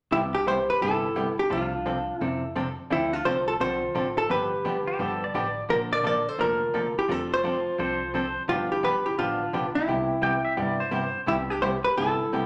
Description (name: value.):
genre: country, western swing.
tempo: 172 BPM.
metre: 4/4.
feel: swing 64% on 8ths.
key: C major.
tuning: A4 = 442 Hz.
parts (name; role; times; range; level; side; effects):
vintage hollow-body jazz guitar; melody; 0.1-12.5 s; E4 to D5; -28 LUFS; equal; none.
mellow clarinet; second line; 0.1-12.5 s; C4 to Bb4; -36 LUFS; equal; none.
hollow-body jazz guitar; accompaniment; 0.1-12.4 s; C3 to A4; -32 LUFS; equal; none.
upright bass; bass; 0.1-12.5 s; F1 to G2; -42 LUFS; equal; none.
pedal steel guitar; second line; 4.9-5.6, 7.8-11.2 s; G4 to G5; -32 LUFS; equal; none.
room: wet large studio reverb, RT60 0.8 s.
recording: none.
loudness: -26 LUFS.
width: mono.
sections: 0.1-11.3 A section; 11.3-12.5 A section.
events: none.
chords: 0.1 Cmaj7; 1.5 F6/C; 2.9 Dm7; 4.3 G7; 5.7 Bbmaj7; 7.1 F6; 8.5 G7; 9.9 Cmaj7.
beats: | 0.11 0.46 0.81 1.16 | 1.51 1.86 2.21 2.56 | 2.90 3.25 3.60 3.95 | 4.30 4.65 5.00 5.35 | 5.70 6.05 6.40 6.75 | 7.09 7.44 7.79 8.14 | 8.49 8.84 9.19 9.53 | 9.88 10.23 10.58 10.93 | 11.28 11.62 11.97 12.32.